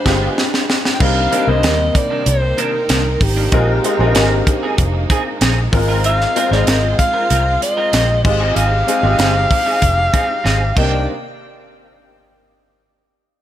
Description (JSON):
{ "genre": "polished 1980s jazz-funk pop", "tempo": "95 BPM", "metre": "4/4", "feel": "straight", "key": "C minor", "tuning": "A4 = 439 Hz", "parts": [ { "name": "breathy alto saxophone", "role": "melody", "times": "0.0-11.1 s", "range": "G4 to G5", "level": "-19 LUFS", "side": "equal", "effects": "none" }, { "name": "warm baby grand piano", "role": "accompaniment", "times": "0.0-11.1 s", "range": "G3 to C5", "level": "-22 LUFS", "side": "left 2 dB", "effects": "ensemble chorus" }, { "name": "warm studio string section", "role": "sustained chords", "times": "0.0-11.1 s", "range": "C3 to B5", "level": "-27 LUFS", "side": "right 2 dB", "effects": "none" }, { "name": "electric guitar at the edge of break-up", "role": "riff", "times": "0.1-11.0 s", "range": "Eb3 to Bb4", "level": "-24 LUFS", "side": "right 3 dB", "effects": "ensemble chorus" }, { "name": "vintage muted fingered electric bass", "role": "bass", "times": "0.1-11.1 s", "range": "F1 to Eb2", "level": "-17 LUFS", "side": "equal", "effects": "none" }, { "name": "tight funk drum kit", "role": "drums", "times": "0.1-10.9 s", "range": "crash cymbal, hi-hat, kick drum, snare drum", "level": "-18 LUFS", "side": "equal", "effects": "gated reverb" } ], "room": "light reverb, small room reverb", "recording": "none", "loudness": "-13 LUFS", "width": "side -11 dB against mid", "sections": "0.0-1.0 A section; 1.0-11.1 B section; 11.1-13.4 C section", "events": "drum fill 0.0-1.0, 10.4-11.1; band accent 0.0-1.0", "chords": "0.0 G7b9; 1.0 Cm9; 3.5 Bb9sus4; 5.7 Ab69; 8.2 Fm7; 10.8 Cm9; 11.1 N.C." }